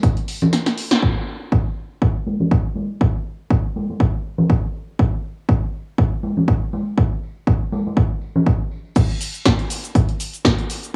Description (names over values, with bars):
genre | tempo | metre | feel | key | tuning
house | 121 BPM | 4/4 | swing 55% on 16ths | none | none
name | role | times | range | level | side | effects
electronic kick drum | drums | 0.0-10.6 s | none | -20 LUFS | equal | cassette tape
punchy analog drum machine | drums | 0.0-1.0, 9.0-10.9 s | cabasa, crash cymbal, hi-hat, snare drum | -24 LUFS | equal | sidechain pumping on hats, cassette tape, sidechain pumping on cymbals, sidechain pumping on perc
tambourine and congas | percussion | 0.0-8.9 s | none | -23 LUFS | equal | sidechain pumping on perc, low-pass filter on perc
room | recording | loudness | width
light reverb | home recording on cassette, small room ambience | -20 LUFS | mono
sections
0.0-1.0 A section; 1.0-9.0 B section; 9.0-11.0 C section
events
filter sweep on drum 0.0-1.0; kick drops out 0.5-1.0; drum fill 0.5-1.0; band accent 0.9; drop 9.0-11.0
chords
none